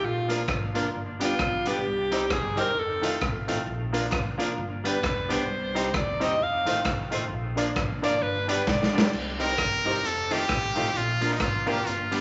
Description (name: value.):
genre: ska.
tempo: 132 BPM.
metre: 4/4.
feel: swing 59% on 8ths.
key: C minor.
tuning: A4 = 441 Hz.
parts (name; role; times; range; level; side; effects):
edgy alto saxophone; melody; 0.0-9.1 s; F4 to F5; -30 LUFS; equal; none.
upright bass; bass; 0.0-12.2 s; F1 to Eb2; -38 LUFS; equal; none.
semi-hollow electric guitar; accompaniment; 0.3-12.2 s; Eb3 to G4; -34 LUFS; equal; tube saturation, tape echo.
honky-tonk upright piano; stabs; 0.3-12.2 s; Bb3 to D5; -35 LUFS; equal; none.
raw garage drum kit; drums; 0.3-12.2 s; crash cymbal, hi-hat, kick drum, rim click, snare drum; -32 LUFS; equal; none.
group handclap; percussion; 0.5-11.5 s; none; -46 LUFS; equal; none.
brilliant trumpet; melody; 9.4-12.2 s; Eb4 to Bb4; -29 LUFS; equal; none.
room: wet large studio reverb, RT60 1.4 s.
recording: vinyl crackle, nothing above 7.9 kHz.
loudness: -26 LUFS.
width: mono.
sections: 0.0-9.1 A section; 9.1-12.2 A section.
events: alto saxophone solo 0.0-9.1; drum fill 8.7-9.1; trumpet solo 9.1-12.2.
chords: 0.0 Bb; 0.9 G; 1.8 Cm; 2.8 F7; 3.7 Bb; 4.6 G; 5.5 Cm; 6.4 F7; 7.3 Bb; 8.2 G; 9.1 Cm; 10.0 F7; 10.9 Bb.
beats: | 0.03 0.48 0.94 1.39 | 1.85 2.30 2.76 3.21 | 3.67 4.12 4.58 5.03 | 5.49 5.94 6.40 6.85 | 7.31 7.76 8.22 8.67 | 9.13 9.58 10.04 10.49 | 10.95 11.40 11.86.